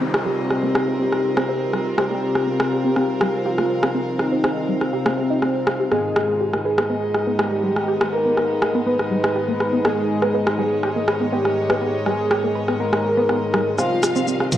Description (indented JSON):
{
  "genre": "melodic techno",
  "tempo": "122 BPM",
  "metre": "4/4",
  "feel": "straight",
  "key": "C phrygian",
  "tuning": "A4 = 442 Hz",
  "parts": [
    { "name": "fat analog lead", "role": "melody", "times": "0.0-14.6 s", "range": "C4 to Cb5", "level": "-23 LUFS", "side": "equal", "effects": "phaser, tape echo" },
    { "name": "evolving wavetable pad", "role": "sustained chords", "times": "0.1-14.6 s", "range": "Ab2 to G4", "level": "-30 LUFS", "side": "right 1 dB", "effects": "chorus, built-in reverb" },
    { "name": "tight sequenced synth", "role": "arpeggios", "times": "0.0-14.6 s", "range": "G3 to C5", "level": "-26 LUFS", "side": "equal", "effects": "chorus, phaser, analog delay" },
    { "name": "sync-sweep polysynth", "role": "stabs", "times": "0.0-14.6 s", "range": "Ab2 to C4", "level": "-26 LUFS", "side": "left 1 dB", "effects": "chorus, cassette tape, analog delay" },
    { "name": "downlifter and riser", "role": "sound effects", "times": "0.0-2.0, 14.5-14.6 s", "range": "none", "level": "-34 LUFS", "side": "right 1 dB", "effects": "none" },
    { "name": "rich chamber string section", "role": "texture", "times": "0.0-14.6 s", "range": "Ab3 to F5", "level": "-30 LUFS", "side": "right 1 dB", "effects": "none" },
    { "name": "techno drum kit", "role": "drums", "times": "0.1-14.6 s", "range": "hi-hat, rim click, shaker, toms", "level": "-24 LUFS", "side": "equal", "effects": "none" },
    { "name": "warm studio violin section", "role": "second line", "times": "13.8-14.6 s", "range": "F5", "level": "-27 LUFS", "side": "equal", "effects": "analog delay" }
  ],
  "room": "light reverb",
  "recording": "dry, gritty hardware recording, transformer saturation",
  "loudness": "-18 LUFS",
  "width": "side -12 dB against mid",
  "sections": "0.0-13.8 A section",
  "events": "filter sweep on synth arpeggio sound 0.0-13.8; filter sweep on analog synth lead 0.0-13.8; filter sweep on analog polysynth 0.0-13.8; filter sweep on ambient pad 0.0-13.8",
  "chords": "0.0 Cm; 5.9 Abm; 13.8 Cm"
}